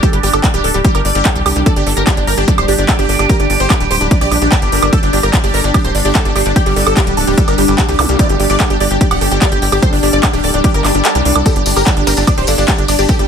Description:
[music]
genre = psychedelic trance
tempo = 147 BPM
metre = 4/4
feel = straight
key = unclear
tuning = A4 = 441 Hz
[part]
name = supersaw stab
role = melody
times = 0.0-13.3 s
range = G3 to F#5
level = -19 LUFS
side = equal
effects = phaser, sidechain pumping, digital delay
[part]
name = overtone-sweeping drone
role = sustained chords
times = 0.0-13.3 s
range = G3 to G4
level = -20 LUFS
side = right 1 dB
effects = chorus, built-in reverb, sidechain pumping
[part]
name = wide unison pluck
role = riff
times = 0.0-13.3 s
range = G4 to D5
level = -21 LUFS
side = moving between left 2 dB and right 5 dB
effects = auto-pan, sidechain pumping, digital delay
[part]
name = electronic kick drum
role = drums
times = 0.0-13.2 s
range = none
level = -14 LUFS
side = equal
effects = overdrive, small room ambience
[part]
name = techno drum kit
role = drums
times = 0.0-13.3 s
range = handclaps, hi-hat, ride cymbal, woodblock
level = -18 LUFS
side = right 2 dB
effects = overdrive, small room ambience
[part]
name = impact, zap and swell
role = sound effects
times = 0.0, 8.0-8.1, 10.8-11.5 s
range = none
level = -27 LUFS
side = left 1 dB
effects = none
[part]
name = ethereal airy pad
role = texture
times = 0.0-13.3 s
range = D4 to D6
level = -21 LUFS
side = left 2 dB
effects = ensemble chorus, built-in reverb, phaser, sidechain pumping
[part]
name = tight sequencer bass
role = bass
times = 0.1-13.3 s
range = D1 to C2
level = -17 LUFS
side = equal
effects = none
[part]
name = tambourine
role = percussion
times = 11.5-13.2 s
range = none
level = -22 LUFS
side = left 5 dB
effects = none
[part]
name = metallic wobble bass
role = second line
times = 12.1-12.7 s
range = Bb3 to C4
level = -29 LUFS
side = right 4 dB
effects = none
[sound]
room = little or no reverb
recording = none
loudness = -10 LUFS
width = side -7 dB against mid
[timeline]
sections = 0.0-13.3 A section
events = kick drops out 11.1-11.5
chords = 0.0 G5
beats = | 0.03 0.44 0.84 1.25 | 1.66 2.07 2.48 2.89 | 3.29 3.70 4.11 4.52 | 4.93 5.33 5.74 6.15 | 6.56 6.97 7.38 7.78 | 8.19 8.60 9.01 9.42 | 9.82 10.23 10.64 11.05 | 11.46 11.87 12.27 12.68 | 13.09

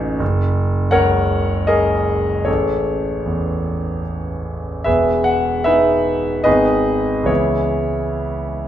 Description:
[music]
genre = classical, impressionist solo piano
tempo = 69-83 BPM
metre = 3/4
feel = rubato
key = unclear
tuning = A4 = 440 Hz
[part]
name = clear concert grand piano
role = solo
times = 0.0-8.7 s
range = E1 to F#5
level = -16 LUFS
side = equal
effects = none
[sound]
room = moderate recital hall reverb, RT60 1.4 s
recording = minimal, uncompressed stereo recording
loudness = -15 LUFS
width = side -11 dB against mid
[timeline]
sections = 0.0-8.7 A section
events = none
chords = 0.2 F#add9; 2.5 Amaj7; 4.9 Emaj7; 6.5 G#m; 7.3 C#m7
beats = | 0.21 0.94 1.70 | 2.47 3.26 4.05 | 4.86 5.67 6.46 | 7.29 8.15

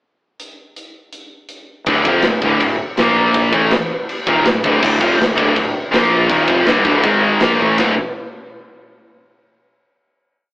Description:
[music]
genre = heavy metal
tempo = 163 BPM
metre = 4/4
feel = straight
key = D minor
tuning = A4 = 439 Hz
[part]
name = tight metal drum kit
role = drums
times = 0.4-7.9 s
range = china cymbal, crash cymbal, hi-hat, kick drum, ride cymbal, snare drum, toms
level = -20 LUFS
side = equal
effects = none
[part]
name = overdriven semi-hollow guitar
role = riff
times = 1.9-7.9 s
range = D2 to Bb3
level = -20 LUFS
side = equal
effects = none
[part]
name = scooped high-gain guitar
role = riff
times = 1.9-7.9 s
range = D2 to Bb3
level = -15 LUFS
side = left 1 dB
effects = distortion
[part]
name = sludgy distorted guitar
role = riff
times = 1.9-7.9 s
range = D2 to Bb3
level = -21 LUFS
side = right 1 dB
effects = overdrive
[part]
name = fuzz fingered electric bass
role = bass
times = 1.9-7.9 s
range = D1 to Bb1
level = -23 LUFS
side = equal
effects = overdrive
[sound]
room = moderate studio reverb, RT60 0.7 s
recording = rough rehearsal-room recording, AM radio sound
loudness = -12 LUFS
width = side -21 dB against mid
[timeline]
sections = 0.4-1.9 pickup bar; 1.9-7.8 riff; 7.8-9.2 final chord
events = drum fill 7.6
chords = 0.4 N.C.; 1.9 Dm; 3.0 Bb5; 3.5 Dm; 5.9 Bb5; 6.3 Dm; 7.0 G#5; 7.4 Fadd11; 7.8 D5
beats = | 0.40 0.77 1.14 1.50 | 1.87 2.24 2.61 2.98 | 3.35 3.71 4.08 4.45 | 4.82 5.18 5.55 5.92 | 6.29 6.66 7.03 7.40 | 7.77

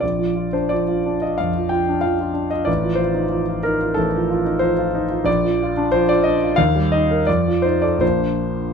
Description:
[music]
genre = classical, romantic character piece for solo piano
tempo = 78-95 BPM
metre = 4/4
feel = rubato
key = Bb major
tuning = A4 = 438 Hz
[part]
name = warm concert grand piano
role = solo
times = 0.0-8.7 s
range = A1 to G5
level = -17 LUFS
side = equal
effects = none
[sound]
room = light reverb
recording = dark, warm production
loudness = -17 LUFS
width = side -6 dB against mid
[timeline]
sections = 0.0-8.7 A section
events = none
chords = 0.0 Bb; 2.7 F7/A; 5.3 Bb; 6.6 Eb; 7.3 F7; 8.0 Bb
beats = | 0.02 0.72 1.39 2.03 | 2.68 3.32 3.98 4.62 | 5.27 5.92 6.58 7.27 | 8.02

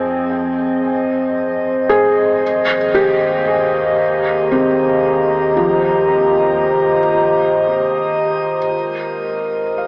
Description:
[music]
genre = ambient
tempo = 57 BPM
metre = 3/4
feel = straight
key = unclear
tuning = A4 = 442 Hz
[part]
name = warbly tape-like pad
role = sustained chords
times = 0.0-9.9 s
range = Eb3 to Bb5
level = -16 LUFS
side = equal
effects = chorus, built-in reverb, shimmer reverb
[part]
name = felt-muted upright piano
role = arpeggios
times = 0.0-9.9 s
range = F3 to G5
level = -19 LUFS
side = equal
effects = diffuse ambient delay, shimmer reverb
[part]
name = round analog bass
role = bass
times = 0.0-8.7 s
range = Eb2 to F2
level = -40 LUFS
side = equal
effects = none
[part]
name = glass harmonica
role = texture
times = 0.0-9.9 s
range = Bb4 to C5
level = -20 LUFS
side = equal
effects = shimmer reverb
[sound]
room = wet huge ambient reverb, RT60 8.2 s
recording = AM radio sound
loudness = -13 LUFS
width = side -30 dB against mid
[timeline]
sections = 0.0-8.7 A section; 8.7-9.9 B section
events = none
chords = 0.0 Fm7; 2.4 Eb; 8.7 Abadd9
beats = 0.31 1.37 | 2.42 3.47 4.52 | 5.58 6.63 7.68 | 8.73 9.79

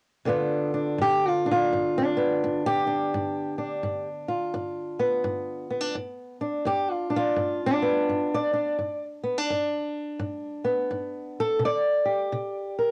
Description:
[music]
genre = acoustic country blues, solo or duo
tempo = 85 BPM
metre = 4/4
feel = swing 63% on 8ths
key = G mixolydian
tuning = A4 = 442 Hz
[part]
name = fingerpicked old ladder-braced acoustic guitar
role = solo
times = 0.3-12.9 s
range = G2 to D5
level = -26 LUFS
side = equal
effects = none
[sound]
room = moderate booth ambience, RT60 0.2 s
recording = home recording on cassette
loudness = -27 LUFS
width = mono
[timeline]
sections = 0.3-12.9 A section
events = none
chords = 0.3 G7; 11.6 C5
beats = | 0.30 1.00 1.71 2.42 | 3.13 3.83 4.54 5.25 | 5.96 6.67 7.37 8.08 | 8.79 9.50 10.20 10.91 | 11.62 12.33

